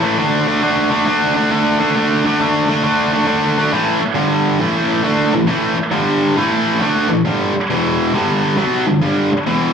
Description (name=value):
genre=rock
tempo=136 BPM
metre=4/4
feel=swing 65% on 8ths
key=unclear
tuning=A4 = 445 Hz
part: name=tight distorted guitar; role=solo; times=0.0-9.7 s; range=E2 to D4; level=-13 LUFS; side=equal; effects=distortion, slapback echo
room=moderate lush hall reverb, RT60 2.5 s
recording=live gig heard through the venue's PA, club reverb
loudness=-13 LUFS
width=side -7 dB against mid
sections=0.0-3.7 A section; 3.7-9.7 B section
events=none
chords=0.2 D5; 3.7 A5; 4.2 G5; 4.6 A5; 5.9 G5; 6.4 A5; 7.2 G5; 7.7 E5; 8.1 G5